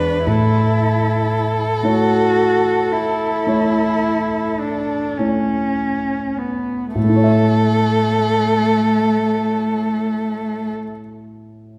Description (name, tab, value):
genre	classical, slow romantic movement for piano trio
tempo	32-40 BPM (dotted quarters)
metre	12/8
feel	rubato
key	A major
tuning	A4 = 439 Hz
part	warm violin	melody	0.0-10.7 s	A4 to B4	-23 LUFS	equal	none
part	rich cello	second line	0.0-10.7 s	A3 to F#4	-22 LUFS	equal	none
part	dark concert grand piano	accompaniment	0.0-11.8 s	E2 to E5	-22 LUFS	equal	none
room	wet scoring stage reverb, RT60 1.6 s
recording	none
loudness	-18 LUFS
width	mono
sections	0.0-7.0 A section; 7.0-11.8 B section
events	slowing down 0.0-7.0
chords	0.3 A